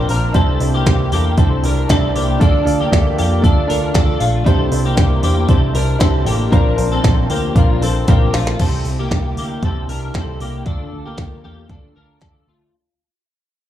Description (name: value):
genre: jangly indie pop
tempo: 116 BPM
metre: 4/4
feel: straight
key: unclear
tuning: A4 = 439 Hz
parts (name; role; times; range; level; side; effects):
- electric guitar through a small old amp; accompaniment; 0.0-12.7 s; Bb2 to Bb4; -27 LUFS; right 8 dB; slapback echo
- warm upright piano; accompaniment; 0.0-8.6 s; D4 to E5; -22 LUFS; equal; slapback echo
- twelve-string electric guitar; arpeggios; 0.0-12.7 s; A3 to Bb4; -22 LUFS; left 4 dB; ensemble chorus, tape echo, slapback echo
- vintage muted picked electric bass; bass; 0.0-12.7 s; A1 to F2; -19 LUFS; equal; none
- glitchy drum kit; drums; 0.1-12.3 s; crash cymbal, hi-hat, kick drum, snare drum; -16 LUFS; equal; none
room: little or no reverb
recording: live gig heard through the venue's PA, club reverb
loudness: -13 LUFS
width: side -12 dB against mid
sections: 0.0-8.6 A section; 8.6-12.7 B section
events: drum fill 8.1-8.6; fade-out 8.6-12.7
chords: 0.3 Cadd9; 2.4 Dm; 4.5 Cadd9; 6.5 Bbadd9; 8.6 Cadd9; 10.7 Dm